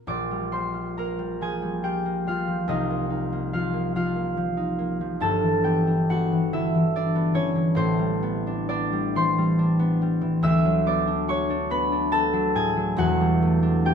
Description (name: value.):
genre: classical, solo harp piece.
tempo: 47 BPM (dotted quarters).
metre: 6/8.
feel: rubato.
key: unclear.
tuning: A4 = 440 Hz.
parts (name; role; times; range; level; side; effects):
concert harp; solo; 0.0-13.9 s; E1 to Fb6; -21 LUFS; equal; none.
room: moderate stone room reverb, RT60 1.0 s.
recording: minimal, uncompressed stereo recording.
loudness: -21 LUFS.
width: side -7 dB against mid.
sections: 0.1-13.9 A section.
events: none.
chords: 0.1 Bb6; 2.7 Cm11; 5.2 G6; 7.8 Am11; 10.5 D6; 13.0 Em11.